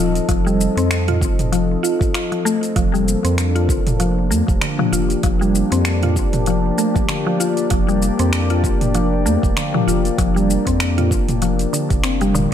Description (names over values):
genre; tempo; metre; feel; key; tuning
organic downtempo; 97 BPM; 4/4; swing 57% on 16ths; unclear; A4 = 441 Hz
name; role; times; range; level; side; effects
warm analog pad; sustained chords; 0.0-12.5 s; F3 to Eb5; -22 LUFS; left 2 dB; chorus, sidechain pumping
mallet-like synth pluck; arpeggios; 0.0-12.5 s; D3 to F4; -20 LUFS; left 2 dB; chorus, ping-pong delay
round analog bass; bass; 0.0-12.5 s; Eb1 to F2; -20 LUFS; right 1 dB; sidechain pumping
deep house drum kit; drums; 0.2-12.5 s; finger snaps, hi-hat, shaker, toms; -24 LUFS; right 1 dB; overdrive
electronic kick drum; drums; 0.3-12.0 s; none; -20 LUFS; right 1 dB; none
room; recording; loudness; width
moderate echo chamber reverb, RT60 1.7 s, digital ambience; none; -15 LUFS; side -9 dB against mid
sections
0.0-12.5 A section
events
none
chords
0.0 F7; 2.8 Gm7/F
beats
| 0.29 0.90 1.52 2.14 | 2.76 3.38 4.00 4.62 | 5.23 5.85 6.47 7.09 | 7.71 8.33 8.95 9.56 | 10.18 10.80 11.42 12.04